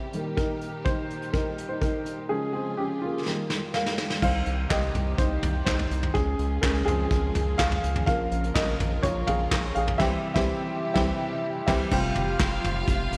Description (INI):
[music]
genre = piano-driven pop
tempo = 125 BPM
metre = 4/4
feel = straight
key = unclear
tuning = A4 = 440 Hz
[part]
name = warm upright piano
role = accompaniment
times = 0.0-13.2 s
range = C3 to F5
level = -30 LUFS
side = equal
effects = none
[part]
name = warm studio string section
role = sustained chords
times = 0.0-13.2 s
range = Bb2 to Bb4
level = -39 LUFS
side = equal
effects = none
[part]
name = vintage brush drum kit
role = drums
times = 0.1-13.2 s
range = crash cymbal, handclaps, hi-hat, kick drum, snare drum, toms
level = -30 LUFS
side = equal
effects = none
[part]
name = round analog bass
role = bass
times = 4.2-13.2 s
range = F1 to Db2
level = -31 LUFS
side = equal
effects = none
[part]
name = warm studio violin section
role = second line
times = 11.9-13.2 s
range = F4 to F5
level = -34 LUFS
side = equal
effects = slapback echo
[sound]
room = moderate lush hall reverb, RT60 2.0 s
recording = big arena sound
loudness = -26 LUFS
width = mono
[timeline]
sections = 0.0-4.2 A section; 4.2-11.9 B section; 11.9-13.2 C section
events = upright piano solo 0.0-4.2, 4.2-11.9; drum fill 3.3-4.2; band accent 10.0-11.9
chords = 0.1 Eb; 2.3 Db; 3.3 Ebadd9; 4.2 Cm; 6.2 Db; 8.1 Bbm; 10.0 C; 11.9 Fsus2